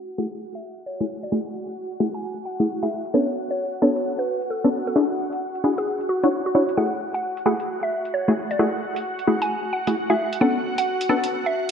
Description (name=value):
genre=UK garage, two-step garage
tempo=132 BPM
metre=4/4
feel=swing 62% on 16ths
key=F# minor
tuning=A4 = 441 Hz
part: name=mallet-like synth pluck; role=melody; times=0.0-11.6 s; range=F#4 to G#5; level=-27 LUFS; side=right 1 dB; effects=chorus, digital delay
part: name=ethereal airy pad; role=sustained chords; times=0.0-11.7 s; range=F#4 to F#5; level=-30 LUFS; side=equal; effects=ensemble chorus, built-in reverb
part: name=punchy chord stab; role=stabs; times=0.0-11.2 s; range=A3 to C#5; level=-22 LUFS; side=left 1 dB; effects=chorus, digital delay
part: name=electronic hi-hat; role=drums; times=0.1-11.3 s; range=none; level=-34 LUFS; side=right 3 dB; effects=overdrive, low-pass filter on snare, studio reverb, low-pass filter on hats
room=wet lush hall reverb, RT60 1.7 s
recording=bright 1980s-style digital production, low-pass filter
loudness=-21 LUFS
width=side -7 dB against mid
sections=0.0-11.7 A section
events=filter sweep on drum 0.0-11.7; filter sweep on synth stab 0.0-11.7; filter sweep 0.0-11.7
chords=0.0 F#m9; 2.9 Bm9; 5.0 N.C.; 6.8 F#m9; 10.2 Bm9